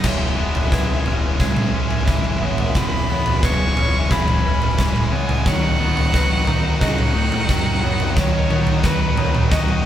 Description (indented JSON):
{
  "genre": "post-rock",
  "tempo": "89 BPM",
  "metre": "4/4",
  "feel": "straight",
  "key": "E major",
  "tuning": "A4 = 440 Hz",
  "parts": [
    { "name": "rich violin", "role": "melody", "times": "0.0-9.9 s", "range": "B4 to C#6", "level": "-26 LUFS", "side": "right 1 dB", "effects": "none" },
    { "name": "clear studio string section", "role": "sustained chords", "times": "0.0-9.9 s", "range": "B3 to D#5", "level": "-36 LUFS", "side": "left 1 dB", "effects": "none" },
    { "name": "felt-muted upright piano", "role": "arpeggios", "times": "0.0-9.9 s", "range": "B4 to E5", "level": "-33 LUFS", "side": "equal", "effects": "none" },
    { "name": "twangy electric guitar", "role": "arpeggios", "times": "0.0-9.9 s", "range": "E2 to G#4", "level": "-29 LUFS", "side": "left 2 dB", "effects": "none" },
    { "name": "distorted electric guitar", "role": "riff", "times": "0.0-9.9 s", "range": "D#3 to G#3", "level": "-25 LUFS", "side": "left 1 dB", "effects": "overdrive" },
    { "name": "fuzz fingered electric bass", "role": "bass", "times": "0.0-9.8 s", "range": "E1 to D#3", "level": "-25 LUFS", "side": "equal", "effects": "overdrive" },
    { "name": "huge arena drum kit", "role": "drums", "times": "0.0-9.8 s", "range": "crash cymbal, kick drum, snare drum, toms", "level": "-18 LUFS", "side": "equal", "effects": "none" }
  ],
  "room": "moderate studio reverb, RT60 0.9 s",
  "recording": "band playing live in one room",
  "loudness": "-16 LUFS",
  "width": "side -10 dB against mid",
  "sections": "0.0-9.9 A section",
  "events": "build-up 0.0-9.9; drum fill 0.0-9.9",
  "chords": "0.0 E6; 5.5 B",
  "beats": "| 0.04 0.72 1.40 2.08 | 2.76 3.43 4.11 4.79 | 5.46 6.14 6.82 7.49 | 8.17 8.84 9.52"
}